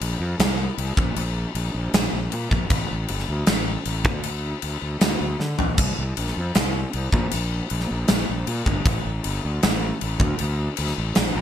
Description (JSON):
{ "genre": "hard rock", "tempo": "156 BPM", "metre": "4/4", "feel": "straight", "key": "unclear", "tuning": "A4 = 441 Hz", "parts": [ { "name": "fuzz fingered electric bass", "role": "bass", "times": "0.0-11.4 s", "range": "G1 to D3", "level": "-25 LUFS", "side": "equal", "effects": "overdrive" }, { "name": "gated 80s drum kit", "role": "drums", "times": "0.0-11.2 s", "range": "crash cymbal, kick drum, snare drum, splash cymbal, toms", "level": "-23 LUFS", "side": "equal", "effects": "gated reverb" } ], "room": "little or no reverb", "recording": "bright 1980s-style digital production", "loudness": "-21 LUFS", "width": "side -10 dB against mid", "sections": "0.0-11.4 A section", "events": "drum fill 5.4-5.8", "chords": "none", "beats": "0.02 0.40 0.79 | 1.17 1.55 1.94 2.32 | 2.71 3.09 3.48 3.86 | 4.24 4.63 5.01 5.40 | 5.78 6.17 6.55 6.94 | 7.32 7.71 8.09 8.47 | 8.86 9.24 9.62 10.01 | 10.39 10.77 11.15" }